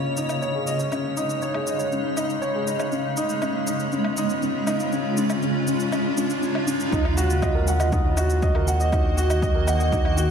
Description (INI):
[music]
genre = piano and strings electronica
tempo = 120 BPM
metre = 4/4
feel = straight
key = Eb minor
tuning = A4 = 440 Hz
[part]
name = granular cloud pad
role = sustained chords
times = 0.0-10.3 s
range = Db3 to Eb5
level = -26 LUFS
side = equal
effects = built-in reverb
[part]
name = dark upright piano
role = riff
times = 0.0-10.3 s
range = Db4 to Gb5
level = -25 LUFS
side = equal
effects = tape echo
[part]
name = riser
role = sound effects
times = 1.5-6.9 s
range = none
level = -33 LUFS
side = right 1 dB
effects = none
[part]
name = shaker and woodblock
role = drums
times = 0.2-10.3 s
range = none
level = -33 LUFS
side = left 1 dB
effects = overdrive, small room ambience
[part]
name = warm sub bass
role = bass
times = 6.9-10.3 s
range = Eb2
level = -23 LUFS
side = equal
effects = sidechain pumping
[part]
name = electronic kick drum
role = drums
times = 6.9-10.0 s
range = none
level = -24 LUFS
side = equal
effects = overdrive, small room ambience
[sound]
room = moderate echo chamber reverb, RT60 2.1 s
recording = none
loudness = -21 LUFS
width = side -7 dB against mid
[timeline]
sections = 0.0-6.9 A section; 6.9-10.3 B section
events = build-up 0.0-6.9; riser 1.5-6.9; drop 6.9-10.3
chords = 0.0 Absus4; 2.9 Db; 6.9 Ebm